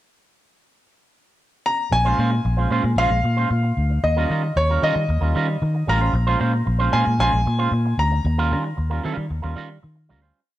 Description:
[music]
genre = disco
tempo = 114 BPM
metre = 4/4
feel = straight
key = Bb dorian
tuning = A4 = 440 Hz
[part]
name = clear concert grand piano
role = melody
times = 1.7-9.8 s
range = Db5 to Bb5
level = -24 LUFS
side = left 1 dB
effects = none
[part]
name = electric guitar with an envelope filter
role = accompaniment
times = 1.9-10.4 s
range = G3 to C5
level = -25 LUFS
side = right 5 dB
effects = warbly pitch drift
[part]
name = fingered electric bass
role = bass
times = 1.9-10.3 s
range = A1 to Eb3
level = -20 LUFS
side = equal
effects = none
[sound]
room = light reverb, studio reverb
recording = none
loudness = -18 LUFS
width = side -14 dB against mid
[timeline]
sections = 0.0-1.9 pickup bar; 1.9-10.4 groove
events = fade-out 8.3-10.4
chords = 0.0 N.C.; 1.9 Bbm9; 4.0 Eb9; 6.1 Bbm9; 8.3 Eb9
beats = 0.33 0.86 1.39 | 1.92 2.44 2.97 3.50 | 4.03 4.56 5.09 5.61 | 6.14 6.67 7.20 7.72 | 8.25 8.78 9.30 9.83

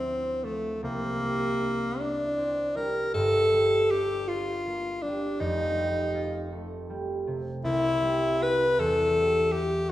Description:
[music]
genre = classical, impressionist duo for alto saxophone and harp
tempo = 53 BPM (dotted quarters)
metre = 6/8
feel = uneven beats, rubato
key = unclear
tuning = A4 = 440 Hz
[part]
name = clear alto saxophone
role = melody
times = 0.0-9.9 s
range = A3 to B4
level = -25 LUFS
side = left 1 dB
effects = none
[part]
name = concert harp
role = accompaniment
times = 0.0-9.9 s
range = F1 to F#4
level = -31 LUFS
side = right 2 dB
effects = none
[sound]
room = wet recital hall reverb, RT60 1.6 s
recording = lossy compression artefacts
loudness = -24 LUFS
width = side -14 dB against mid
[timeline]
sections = 0.0-9.9 A section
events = none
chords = 0.0 Dm9; 0.8 C9; 3.1 Gm9; 5.4 F9; 7.6 C; 8.8 Emadd9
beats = | 0.82 1.99 | 3.14 4.28 | 5.40 6.52 | 7.64 8.79 | 9.89

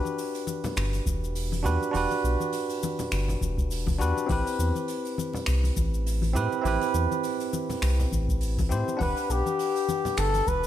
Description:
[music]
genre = sunset chillout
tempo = 102 BPM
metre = 4/4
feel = swing 56% on 16ths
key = E minor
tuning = A4 = 437 Hz
[part]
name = bell-like tine electric piano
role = accompaniment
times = 0.0-10.7 s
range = C4 to F#5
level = -29 LUFS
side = moving between left 5 dB and right 6 dB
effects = auto-pan, digital delay
[part]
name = jazz brush drum kit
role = drums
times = 0.1-10.7 s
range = cabasa, finger snaps, hi-hat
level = -37 LUFS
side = equal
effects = none
[part]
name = congas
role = percussion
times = 0.1-10.6 s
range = none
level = -36 LUFS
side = left 4 dB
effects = none
[part]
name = round analog bass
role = bass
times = 0.8-10.7 s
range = E1 to A2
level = -26 LUFS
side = equal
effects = none
[part]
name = electronic kick drum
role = drums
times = 1.1-10.6 s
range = none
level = -30 LUFS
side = equal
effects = none
[part]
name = mellow flugelhorn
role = melody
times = 9.0-10.7 s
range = G4 to B4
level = -26 LUFS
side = left 3 dB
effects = digital delay
[sound]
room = light reverb, studio reverb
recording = none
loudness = -24 LUFS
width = side -11 dB against mid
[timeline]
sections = 0.0-10.7 A section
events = none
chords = 0.0 Em9; 4.3 Am9; 9.0 Em9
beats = 0.18 0.77 1.35 | 1.94 2.53 3.12 3.71 | 4.29 4.88 5.47 6.06 | 6.65 7.24 7.82 8.41 | 9.00 9.59 10.18

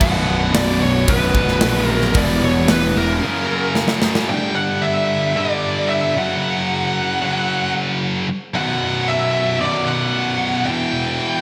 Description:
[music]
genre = heavy metal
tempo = 113 BPM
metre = 4/4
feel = straight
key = B harmonic minor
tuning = A4 = 440 Hz
[part]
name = high-gain lead guitar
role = melody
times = 0.0-11.4 s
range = A#4 to G5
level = -23 LUFS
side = equal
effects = distortion, digital delay
[part]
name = warm analog pad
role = sustained chords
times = 0.0-4.3 s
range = C#3 to B4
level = -32 LUFS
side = equal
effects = none
[part]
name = scooped high-gain guitar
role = riff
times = 0.0-11.4 s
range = B1 to G3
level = -22 LUFS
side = equal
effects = distortion
[part]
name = tight distorted guitar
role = riff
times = 0.0-4.3 s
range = B1 to F#3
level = -26 LUFS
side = equal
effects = distortion
[part]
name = fuzz picked electric bass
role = bass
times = 0.0-3.2 s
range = B0 to A#1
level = -23 LUFS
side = equal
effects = overdrive
[part]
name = tight metal drum kit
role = drums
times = 0.0-4.3 s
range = crash cymbal, hi-hat, kick drum, snare drum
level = -22 LUFS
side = equal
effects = gated reverb
[sound]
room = moderate lush hall reverb, RT60 1.7 s, small room ambience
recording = bright 1980s-style digital production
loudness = -18 LUFS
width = mono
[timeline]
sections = 0.0-4.3 A section; 4.3-11.4 A section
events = drum fill 3.8-4.3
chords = 0.0 Bm; 2.2 Em; 3.2 F#; 4.3 G5; 6.2 F#5; 8.5 B5; 10.7 Em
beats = | 0.01 0.55 1.08 1.62 | 2.15 2.69 3.22 3.75 | 4.29 4.82 5.35 5.88 | 6.42 6.95 7.48 8.01 | 8.55 9.08 9.61 10.14 | 10.67 11.20

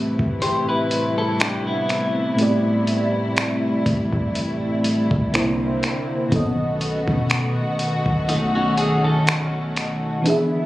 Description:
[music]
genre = contemporary R&B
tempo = 61 BPM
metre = 4/4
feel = swing 54% on 16ths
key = unclear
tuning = A4 = 440 Hz
[part]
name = FM electric piano with soft pad layer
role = accompaniment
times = 0.0-10.7 s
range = A2 to E5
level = -23 LUFS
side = equal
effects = chorus
[part]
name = warm studio string section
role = sustained chords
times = 0.0-10.7 s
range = C3 to F#4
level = -24 LUFS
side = equal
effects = none
[part]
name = clean 808-style bass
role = bass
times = 0.0-10.2 s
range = A1 to B2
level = -28 LUFS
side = equal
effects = none
[part]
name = dusty soul sampler-style drum kit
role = drums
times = 0.2-10.5 s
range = finger snaps, hi-hat, kick drum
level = -24 LUFS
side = equal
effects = none
[part]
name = clean electric guitar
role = arpeggios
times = 0.4-10.2 s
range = A3 to C5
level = -24 LUFS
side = left 1 dB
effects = lush chorus, digital delay
[sound]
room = light reverb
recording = recorded on a phone in the room, club reverb, compression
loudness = -18 LUFS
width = side -16 dB against mid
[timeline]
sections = 0.0-10.7 A section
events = none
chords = 0.0 Am7; 5.3 C9; 6.3 B7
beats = 0.42 1.40 | 2.38 3.37 4.35 5.33 | 6.32 7.30 8.29 9.27 | 10.25

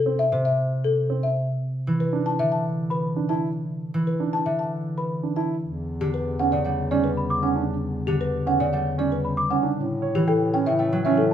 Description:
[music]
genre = classical, minimalist pattern music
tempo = 116 BPM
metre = 4/4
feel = straight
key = E dorian from 5.6 s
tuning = A4 = 440 Hz
[part]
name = folk marimba with soft mallets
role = melody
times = 0.0-11.3 s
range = G4 to A5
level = -25 LUFS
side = left 2 dB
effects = none
[part]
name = concert harp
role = accompaniment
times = 0.0-11.3 s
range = C3 to A3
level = -26 LUFS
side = equal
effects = none
[part]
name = warm grand piano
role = arpeggios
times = 0.1-11.2 s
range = C4 to C#5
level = -27 LUFS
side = right 8 dB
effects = none
[part]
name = worn celesta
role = arpeggios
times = 2.9-11.3 s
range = G5 to D6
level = -29 LUFS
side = left 2 dB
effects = none
[part]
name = warm bass clarinet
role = bass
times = 5.6-11.3 s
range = E2 to A2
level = -28 LUFS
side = left 1 dB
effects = none
[sound]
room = wet large studio reverb, RT60 1.2 s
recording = heard from further back in the room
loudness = -22 LUFS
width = side -9 dB against mid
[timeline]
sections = 0.0-5.6 A section; 5.6-11.3 B section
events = none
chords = 0.0 Am (rootless); 1.5 Bm7 (rootless); 5.6 Em9; 9.8 A7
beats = 0.45 0.97 | 1.48 2.00 2.52 3.04 | 3.55 4.07 4.59 5.11 | 5.62 6.14 6.66 7.17 | 7.69 8.21 8.72 9.24 | 9.76 10.28 10.79 11.31

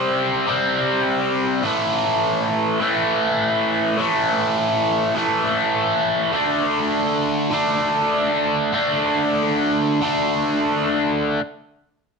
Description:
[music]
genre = rock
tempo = 82-102 BPM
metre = 4/4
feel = straight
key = unclear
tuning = A4 = 441 Hz
[part]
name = biting overdriven guitar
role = solo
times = 0.0-11.4 s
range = A2 to D4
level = -18 LUFS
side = equal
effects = phaser
[sound]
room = moderate large studio reverb, RT60 0.9 s, digital ambience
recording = none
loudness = -18 LUFS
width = side -4 dB against mid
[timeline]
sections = 0.0-11.4 A section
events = slowing down 6.3-11.4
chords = 0.0 C5; 1.6 A5; 6.3 D5; 11.4 N.C.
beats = 0.47 1.05 | 1.64 2.23 2.81 3.40 | 3.98 4.57 5.15 5.74 | 6.32 6.91 7.50 8.11 | 8.73 9.36 10.02 10.70

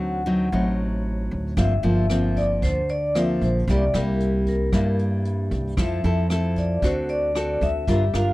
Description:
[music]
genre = bossa nova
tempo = 114 BPM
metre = 4/4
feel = straight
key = unclear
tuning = A4 = 440 Hz
[part]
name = vibraphone with medium mallets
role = melody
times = 0.0-8.3 s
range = Bb4 to F#5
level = -26 LUFS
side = left 1 dB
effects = none
[part]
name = nylon-string guitar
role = accompaniment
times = 0.0-8.3 s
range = G2 to Bb4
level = -24 LUFS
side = equal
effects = none
[part]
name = upright bass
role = bass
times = 0.0-8.3 s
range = G1 to G2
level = -24 LUFS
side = right 1 dB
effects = none
[part]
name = vintage brush drum kit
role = drums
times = 1.6-8.3 s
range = hi-hat, kick drum, rim click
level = -29 LUFS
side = equal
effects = none
[sound]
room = light reverb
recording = dry, close 1970s-style studio recording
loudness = -20 LUFS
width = side -18 dB against mid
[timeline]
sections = 0.0-8.3 A section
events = none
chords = 0.0 D7b9; 1.6 Gm7; 3.7 C7; 5.8 Fmaj7; 6.8 D7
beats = 0.00 0.52 1.05 | 1.57 2.10 2.62 3.15 | 3.67 4.20 4.72 5.25 | 5.77 6.30 6.82 7.35 | 7.87

